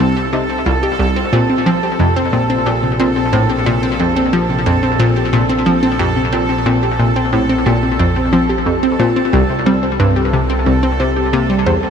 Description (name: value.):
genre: ambient, sequencer-driven space music.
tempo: 90 BPM.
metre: 4/4.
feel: straight.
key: unclear.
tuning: A4 = 440 Hz.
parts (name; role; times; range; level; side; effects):
wide unison pluck; arpeggios; 0.0-11.9 s; C3 to C5; -17 LUFS; left 1 dB; auto-pan, ping-pong delay, shimmer reverb.
analog pluck; riff; 0.0-11.8 s; C2 to G3; -16 LUFS; equal; chorus, ping-pong delay, shimmer reverb.
analog drone; bass; 0.0-11.9 s; Bb1 to C2; -22 LUFS; equal; chorus.
bubbling stepped-filter texture; texture; 0.0-11.9 s; A4; -21 LUFS; right 4 dB; chorus, built-in reverb, shimmer reverb.
room: moderate huge ambient reverb, RT60 8.0 s.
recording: none.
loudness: -12 LUFS.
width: side -7 dB against mid.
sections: 0.0-11.9 A section.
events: none.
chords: 0.0 Cm; 1.3 Bbsus2; 9.3 C5.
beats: 0.00 0.66 | 1.33 2.00 2.66 3.33 | 4.00 4.66 5.33 6.00 | 6.66 7.33 8.00 8.66 | 9.33 10.00 10.66 11.33.